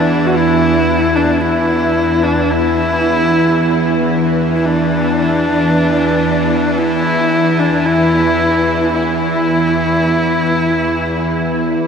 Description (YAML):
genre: dark ambient drone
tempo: 56 BPM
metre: 4/4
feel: straight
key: unclear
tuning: A4 = 439 Hz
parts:
  - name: clear horsehead fiddle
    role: melody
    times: 0.0-11.9 s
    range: D4 to F#4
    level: -14 LUFS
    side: equal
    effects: diffuse ambient delay
  - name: bowed-like drone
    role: drone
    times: 0.0-11.9 s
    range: E2 to E3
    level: -15 LUFS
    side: equal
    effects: built-in reverb
  - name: bronze singing bowl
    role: texture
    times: 0.0-11.9 s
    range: D4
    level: -31 LUFS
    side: equal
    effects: none
room: wet huge ambient reverb, RT60 7.8 s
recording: none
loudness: -12 LUFS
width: side -6 dB against mid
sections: 0.0-11.9 A section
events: none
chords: 0.0 E5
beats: | 0.33 1.40 2.47 3.54 | 4.61 5.68 6.75 7.83 | 8.90 9.97 11.04